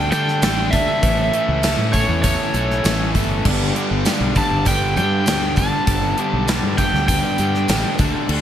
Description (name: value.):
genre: classic rock.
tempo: 99 BPM.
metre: 4/4.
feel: straight.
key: G lydian.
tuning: A4 = 440 Hz.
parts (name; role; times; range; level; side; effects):
overdriven slide guitar; melody; 0.0-8.0 s; C#5 to A5; -22 LUFS; right 1 dB; none.
crunchy overdriven guitar; riff; 0.0-8.4 s; G2 to A4; -23 LUFS; left 1 dB; none.
overdriven electric guitar; riff; 0.0-8.4 s; G2 to D4; -26 LUFS; equal; none.
fuzz fingered electric bass; bass; 0.0-8.4 s; G1 to D3; -22 LUFS; equal; overdrive.
gated 80s drum kit; drums; 0.1-8.4 s; crash cymbal, hi-hat, kick drum, snare drum, tambourine; -21 LUFS; equal; none.
tambourine; percussion; 0.1-8.4 s; none; -37 LUFS; right 6 dB; none.
room: light reverb.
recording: none.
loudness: -16 LUFS.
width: side -10 dB against mid.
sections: 0.0-8.4 A section.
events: none.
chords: 0.0 Dsus4; 1.0 A; 3.5 G.